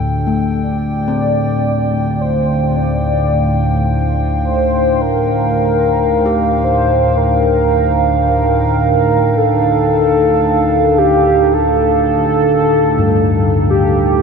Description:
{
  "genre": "dark ambient drone",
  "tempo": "55 BPM",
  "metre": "4/4",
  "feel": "straight",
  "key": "unclear",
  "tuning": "A4 = 440 Hz",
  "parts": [
    { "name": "dark analog pad", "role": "sustained chords", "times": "0.0-14.2 s", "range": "D4 to G5", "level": "-17 LUFS", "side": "right 3 dB", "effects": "chorus" },
    { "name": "analog drone", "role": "drone", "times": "0.0-14.2 s", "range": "D2 to A2", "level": "-17 LUFS", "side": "equal", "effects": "chorus" },
    { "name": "gamelan-type bossed gongs", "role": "arpeggios", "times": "0.3-14.2 s", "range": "G2 to G4", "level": "-22 LUFS", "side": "left 4 dB", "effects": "ping-pong delay" },
    { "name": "mellow horn-like synth lead", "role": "melody", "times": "0.6-14.2 s", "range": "G4 to D5", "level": "-16 LUFS", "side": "left 1 dB", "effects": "analog chorus, ping-pong delay" }
  ],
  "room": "wet huge ambient reverb, RT60 8.4 s",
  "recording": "cassette tape",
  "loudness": "-12 LUFS",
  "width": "side -5 dB against mid",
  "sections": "0.0-14.2 A section",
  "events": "fade-in on analog synth pad 0.0-14.2; filter sweep on synth drone 0.0-14.2",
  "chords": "0.0 D5; 0.6 Eb/D"
}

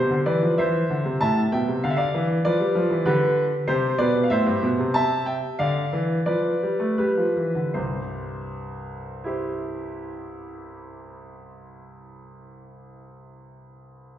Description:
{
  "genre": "classical-period piano sonatina",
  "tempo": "77-98 BPM",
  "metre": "3/4",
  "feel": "rubato",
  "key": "C major",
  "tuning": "A4 = 440 Hz",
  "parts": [
    { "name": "bright concert grand piano", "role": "solo", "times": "0.0-14.2 s", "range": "C2 to A5", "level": "-22 LUFS", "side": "equal", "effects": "none" }
  ],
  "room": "wet recital hall reverb, RT60 1.4 s",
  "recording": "heard from further back in the room, nothing above 7.8 kHz",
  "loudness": "-21 LUFS",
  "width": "side -11 dB against mid",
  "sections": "0.0-7.7 A section; 7.7-12.2 B section",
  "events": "slowing down 2.8-7.7",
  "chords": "0.0 C; 1.8 G7/D; 3.7 C; 5.6 G7/D; 7.7 C"
}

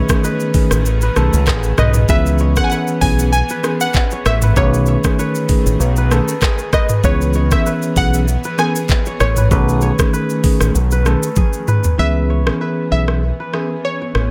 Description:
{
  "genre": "afrobeats",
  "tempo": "97 BPM",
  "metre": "4/4",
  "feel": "swing 55% on 16ths",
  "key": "C# minor",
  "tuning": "A4 = 440 Hz",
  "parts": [
    { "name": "glassy wavetable pluck", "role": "melody", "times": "0.0-14.3 s", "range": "C#5 to G#5", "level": "-24 LUFS", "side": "equal", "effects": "chorus, digital delay" },
    { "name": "bell-like tine electric piano", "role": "accompaniment", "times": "0.0-13.8 s", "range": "D#3 to G#4", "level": "-22 LUFS", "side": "equal", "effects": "none" },
    { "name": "granular cloud pad", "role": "sustained chords", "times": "0.0-14.3 s", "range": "D#3 to G#4", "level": "-32 LUFS", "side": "equal", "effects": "built-in reverb" },
    { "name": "kora", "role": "riff", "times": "0.0-14.3 s", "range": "G#4 to C#5", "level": "-27 LUFS", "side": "equal", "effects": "digital delay" },
    { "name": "afro-pop drum kit", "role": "drums", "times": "0.1-14.3 s", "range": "handclaps, hi-hat, kick drum, rim click, shaker, toms", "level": "-19 LUFS", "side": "equal", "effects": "none" },
    { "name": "fingered electric bass", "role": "bass", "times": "0.7-14.3 s", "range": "A1 to C#2", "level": "-18 LUFS", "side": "equal", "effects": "none" }
  ],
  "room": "little or no reverb",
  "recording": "none",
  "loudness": "-16 LUFS",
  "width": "mono",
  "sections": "0.0-12.0 A section; 12.0-14.3 B section",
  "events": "drum fill 11.4-12.0",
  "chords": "0.0 B13; 2.1 C#m7; 4.6 B13; 7.0 C#m7; 9.5 B13; 12.0 C#m7"
}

